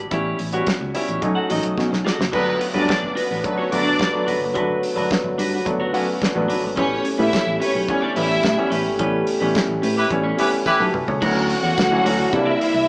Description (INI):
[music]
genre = disco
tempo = 108 BPM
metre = 4/4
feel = straight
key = unclear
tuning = A4 = 439 Hz
[part]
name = clean electric guitar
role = accompaniment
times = 0.0-12.8 s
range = C#4 to F#5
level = -27 LUFS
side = equal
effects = spring reverb
[part]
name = warm baby grand piano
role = accompaniment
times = 0.0-12.9 s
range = E3 to F#5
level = -24 LUFS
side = equal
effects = none
[part]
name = fingered electric bass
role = bass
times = 0.0-12.8 s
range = F#1 to C3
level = -26 LUFS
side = equal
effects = none
[part]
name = damped 70s drum kit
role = drums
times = 0.1-12.7 s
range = crash cymbal, hi-hat, kick drum, snare drum, toms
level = -25 LUFS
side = equal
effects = none
[part]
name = clear studio string section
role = second line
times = 2.3-12.9 s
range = B3 to F#5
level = -22 LUFS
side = equal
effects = none
[part]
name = dark French horn section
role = sustained chords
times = 2.3-12.9 s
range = C3 to B4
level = -24 LUFS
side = equal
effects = none
[part]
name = tambourine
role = percussion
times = 7.3-11.9 s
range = none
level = -39 LUFS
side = left 1 dB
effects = none
[part]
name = clear horn section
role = stabs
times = 10.0-10.8 s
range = E4 to B4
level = -20 LUFS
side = equal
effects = none
[sound]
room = wet large studio reverb, RT60 0.9 s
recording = band playing live in one room, small speaker sound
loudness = -17 LUFS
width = side -30 dB against mid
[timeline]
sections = 0.0-2.3 A section; 2.3-11.2 B section; 11.2-12.9 C section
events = drum fill 1.8-2.3, 10.7-11.2; grand piano fill 5.7-6.8; band accent 9.0-11.2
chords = 0.1 A7; 1.2 B7; 2.3 Gmaj7; 6.8 A9; 11.2 Dmaj7; 12.3 C7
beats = | 0.11 0.67 1.22 1.78 | 2.33 2.89 3.44 4.00 | 4.55 5.11 5.66 6.22 | 6.77 7.33 7.88 8.44 | 8.99 9.55 10.11 10.66 | 11.22 11.77 12.33